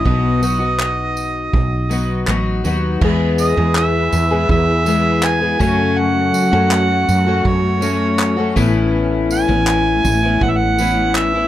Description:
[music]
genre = acoustic pop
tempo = 81 BPM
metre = 4/4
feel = straight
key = E major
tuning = A4 = 441 Hz
[part]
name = fingerpicked twelve-string acoustic guitar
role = accompaniment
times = 0.0-11.5 s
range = F#2 to G#4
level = -18 LUFS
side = left 4 dB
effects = none
[part]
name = woody fretless electric bass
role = bass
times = 0.0-11.5 s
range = A1 to F#2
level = -19 LUFS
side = right 1 dB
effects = none
[part]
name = mellow harmonica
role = melody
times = 0.1-11.5 s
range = C#5 to G#5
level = -19 LUFS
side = right 3 dB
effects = none
[part]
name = unplugged drum kit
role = drums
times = 0.1-11.3 s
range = crash cymbal, handclaps, kick drum, tambourine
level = -22 LUFS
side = right 1 dB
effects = none
[part]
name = warm symphonic string section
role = sustained chords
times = 3.0-11.5 s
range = E3 to B4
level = -27 LUFS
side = right 2 dB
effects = none
[sound]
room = light reverb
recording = none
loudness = -14 LUFS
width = side -13 dB against mid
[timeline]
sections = 0.0-3.0 A section; 3.0-11.5 B section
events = none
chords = 0.1 B; 3.0 E; 5.6 F#m; 8.6 Aadd9

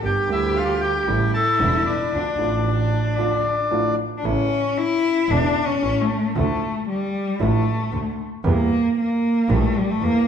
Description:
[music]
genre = tango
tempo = 115 BPM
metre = 4/4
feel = rubato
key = D harmonic minor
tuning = A4 = 444 Hz
[part]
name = warm cello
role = second line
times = 0.0-10.3 s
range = G3 to G4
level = -22 LUFS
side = left 2 dB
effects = none
[part]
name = warm grand piano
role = accompaniment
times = 0.0-10.2 s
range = E1 to G4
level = -27 LUFS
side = right 2 dB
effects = none
[part]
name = clear double bass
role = bass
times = 0.0-10.2 s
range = E1 to E2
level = -24 LUFS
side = right 2 dB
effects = none
[part]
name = bandoneon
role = melody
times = 0.1-4.0 s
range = D4 to A5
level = -22 LUFS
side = left 2 dB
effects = none
[sound]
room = wet large studio reverb, RT60 1.4 s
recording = band playing live in one room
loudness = -18 LUFS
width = side -8 dB against mid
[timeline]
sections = 0.0-4.2 A section; 4.2-10.3 B section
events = cello solo 4.2-10.3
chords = 0.0 Gm; 1.1 A7; 2.1 Dm; 4.2 A; 6.4 Dmadd9; 8.4 Edim

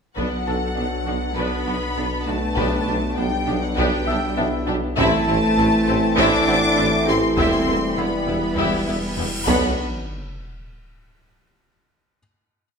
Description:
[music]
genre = cinematic, hybrid orchestral and electronic film score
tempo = 100 BPM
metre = 4/4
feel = straight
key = B phrygian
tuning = A4 = 440 Hz
[part]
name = rich studio violin section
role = melody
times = 0.2-9.8 s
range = F#5 to D6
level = -26 LUFS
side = left 3 dB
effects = none
[part]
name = warm symphonic violin section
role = second line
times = 0.2-9.8 s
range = A3 to F#5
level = -28 LUFS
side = left 2 dB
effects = none
[part]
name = clear symphonic viola section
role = accompaniment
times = 0.2-9.8 s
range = G3 to E4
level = -27 LUFS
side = equal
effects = none
[part]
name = clear trombone section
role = sustained chords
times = 0.2-9.7 s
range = B2 to B3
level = -28 LUFS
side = right 4 dB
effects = none
[part]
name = warm French horn section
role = sustained chords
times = 0.2-9.7 s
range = G3 to E4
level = -26 LUFS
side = left 3 dB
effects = none
[part]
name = clear symphonic cello section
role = bass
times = 0.2-9.8 s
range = F#3 to D4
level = -26 LUFS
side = right 2 dB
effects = none
[part]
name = clear tuba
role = bass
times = 0.2-9.7 s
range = E1 to B1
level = -28 LUFS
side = right 4 dB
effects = none
[part]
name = pure sine sub bass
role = bass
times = 0.2-9.8 s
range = E1 to B1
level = -32 LUFS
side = equal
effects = none
[part]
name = rich symphonic double bass section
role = bass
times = 0.2-9.8 s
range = E1 to B1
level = -32 LUFS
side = right 3 dB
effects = none
[part]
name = taiko ensemble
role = drums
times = 0.2-10.6 s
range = none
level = -29 LUFS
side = equal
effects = none
[part]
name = bright grand piano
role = texture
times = 0.5-9.8 s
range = E4 to E6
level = -33 LUFS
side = left 1 dB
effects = ping-pong delay
[part]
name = cymbal swell and sub drop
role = sound effects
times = 8.5-11.9 s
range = none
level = -31 LUFS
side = equal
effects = none
[sound]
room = wet recital hall reverb, RT60 1.4 s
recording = none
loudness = -18 LUFS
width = side -5 dB against mid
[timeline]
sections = 0.2-9.8 theme; 9.8-12.2 final hit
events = cymbal swell 8.5-9.8; impact 9.8-12.2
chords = 0.2 Bm; 2.6 G/B; 5.0 Am; 7.4 Em; 9.5 Bm; 9.8 N.C.

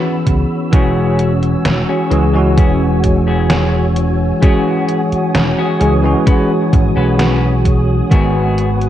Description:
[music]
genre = vaporwave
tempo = 65 BPM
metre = 4/4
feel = straight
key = E major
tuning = A4 = 442 Hz
[part]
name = bell-like tine electric piano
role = accompaniment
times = 0.0-8.9 s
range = D#3 to G#4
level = -15 LUFS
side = equal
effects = medium stereo tremolo, analog chorus, vintage 12-bit sampler grit, analog delay
[part]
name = soft string machine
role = sustained chords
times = 0.0-8.9 s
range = F#4 to E6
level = -22 LUFS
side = right 1 dB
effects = phaser, ensemble chorus, vintage 12-bit sampler grit
[part]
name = clean electric guitar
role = riff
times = 0.0-8.7 s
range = B3 to B4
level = -22 LUFS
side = left 2 dB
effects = lush chorus, vintage 12-bit sampler grit, low-pass filter, analog delay
[part]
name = vintage slap bass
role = bass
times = 0.3-8.9 s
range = E1 to C#2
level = -16 LUFS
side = equal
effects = tube saturation
[part]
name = detuned 8-bit digital drum machine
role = drums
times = 0.3-8.9 s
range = hi-hat, snare drum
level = -20 LUFS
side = equal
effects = overdrive, vintage 12-bit sampler grit, gated reverb
[part]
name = electronic kick drum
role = drums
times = 0.3-8.3 s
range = none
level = -13 LUFS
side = equal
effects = overdrive, vintage 12-bit sampler grit
[sound]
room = light reverb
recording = cassette tape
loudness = -11 LUFS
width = side -12 dB against mid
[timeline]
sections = 0.0-8.9 A section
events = none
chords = 0.0 F#7sus4; 0.7 E69; 8.1 G#m7

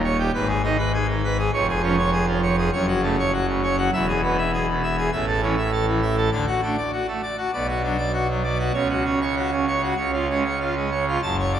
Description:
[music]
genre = classical, organ toccata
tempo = 100 BPM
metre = 4/4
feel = straight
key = F# minor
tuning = A4 = 440 Hz
[part]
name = pipe organ, full organ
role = solo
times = 0.0-11.6 s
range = D#1 to A5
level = -20 LUFS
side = right 1 dB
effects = none
[sound]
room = wet church reverb, RT60 3.2 s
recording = none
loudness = -20 LUFS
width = side -9 dB against mid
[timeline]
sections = 0.0-11.2 A section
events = none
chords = 0.3 G#m; 1.5 C#/E#; 2.7 F#m; 3.9 E; 5.1 A; 6.3 D; 7.5 Bm; 8.7 F#5/C#; 10.0 C#

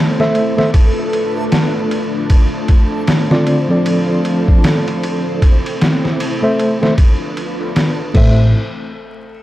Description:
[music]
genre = trip hop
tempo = 77 BPM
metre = 4/4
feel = swing 59% on 16ths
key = A minor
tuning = A4 = 440 Hz
[part]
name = string machine, cellos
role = sustained chords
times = 0.0-8.5 s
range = A3 to C5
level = -21 LUFS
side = equal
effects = ensemble chorus
[part]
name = backwards swelling texture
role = texture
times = 0.0-8.6 s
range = A4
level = -26 LUFS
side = right 1 dB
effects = built-in reverb
[part]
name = mellow tine electric piano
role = accompaniment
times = 0.2-8.5 s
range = D3 to E5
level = -16 LUFS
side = equal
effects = tremolo, low-pass filter, tape echo
[part]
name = trip hop sampler-style drum kit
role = drums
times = 0.2-8.3 s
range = crash cymbal, kick drum, ride cymbal, snare drum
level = -15 LUFS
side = equal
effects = small room ambience
[part]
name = upright bass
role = bass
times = 8.2-8.5 s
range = A1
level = -11 LUFS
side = equal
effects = tube saturation
[sound]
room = little or no reverb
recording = dry, gritty hardware recording, transformer saturation, vinyl crackle, faint mains hum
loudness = -12 LUFS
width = side -15 dB against mid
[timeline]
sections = 0.0-8.5 A section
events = filter sweep on tine electric piano 0.0-8.5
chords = 0.0 Am; 0.7 Bm7b5; 2.3 Dm7; 5.4 Am; 7.0 Bm7b5; 8.1 Am; 8.5 N.C.

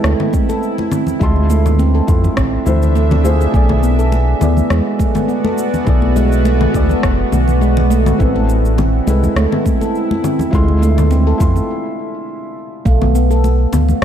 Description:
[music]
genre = organic downtempo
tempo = 103 BPM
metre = 4/4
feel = swing 54% on 16ths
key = unclear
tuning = A4 = 440 Hz
[part]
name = felt-muted upright piano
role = accompaniment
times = 0.0-12.9 s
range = A3 to C6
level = -23 LUFS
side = left 4 dB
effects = sidechain pumping, low-pass filter, tape echo
[part]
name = bowed-like drone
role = sustained chords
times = 0.0-14.0 s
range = B3 to E5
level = -24 LUFS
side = right 2 dB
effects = built-in reverb, sidechain pumping
[part]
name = handpan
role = arpeggios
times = 0.0-14.0 s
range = E3 to A4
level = -18 LUFS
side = right 2 dB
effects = tape echo
[part]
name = round analog bass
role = bass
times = 0.0-14.0 s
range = F1 to F2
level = -14 LUFS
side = equal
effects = none
[part]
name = electronic rim click, shaker and congas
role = drums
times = 0.0-14.0 s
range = none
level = -22 LUFS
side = left 3 dB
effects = small room ambience
[part]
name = electronic kick drum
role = drums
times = 0.3-13.0 s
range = none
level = -16 LUFS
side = equal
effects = small room ambience
[part]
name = congas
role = percussion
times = 0.3-14.0 s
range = none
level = -24 LUFS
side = left 2 dB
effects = none
[part]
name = bronze singing bowl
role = texture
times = 3.5-14.0 s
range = A3 to G#5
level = -30 LUFS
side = right 6 dB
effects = stereo widening
[sound]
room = light reverb, studio reverb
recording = dark, warm production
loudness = -12 LUFS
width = side -9 dB against mid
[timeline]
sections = 0.0-12.9 A section; 12.9-14.0 A section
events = break 11.7-12.9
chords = 0.0 Amadd9; 1.2 Dm9; 3.5 Bm7; 8.2 Amadd9; 10.5 Dm9; 12.9 Bm7b5

